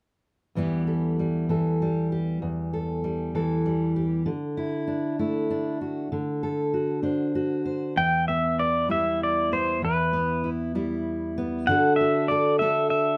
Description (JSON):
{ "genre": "folk", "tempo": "65 BPM (dotted quarters)", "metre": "6/8", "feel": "straight", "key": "E minor", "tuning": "A4 = 440 Hz", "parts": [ { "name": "fingerpicked steel-string acoustic guitar", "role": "accompaniment", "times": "0.6-13.2 s", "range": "E2 to C5", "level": "-27 LUFS", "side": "equal", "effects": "none" }, { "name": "pedal steel guitar", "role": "melody", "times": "8.0-13.2 s", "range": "B4 to G5", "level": "-25 LUFS", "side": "equal", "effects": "none" } ], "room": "wet studio ambience, RT60 0.5 s", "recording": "dark, warm production", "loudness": "-25 LUFS", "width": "mono", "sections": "0.6-8.0 A section; 8.0-13.2 B section", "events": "none", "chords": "0.6 Em; 4.3 Dadd9; 8.0 Em; 11.7 D", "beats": "| 0.55 1.48 | 2.41 3.34 | 4.26 5.19 | 6.12 7.05 | 7.97 8.90 | 9.83 10.75 | 11.68 12.60" }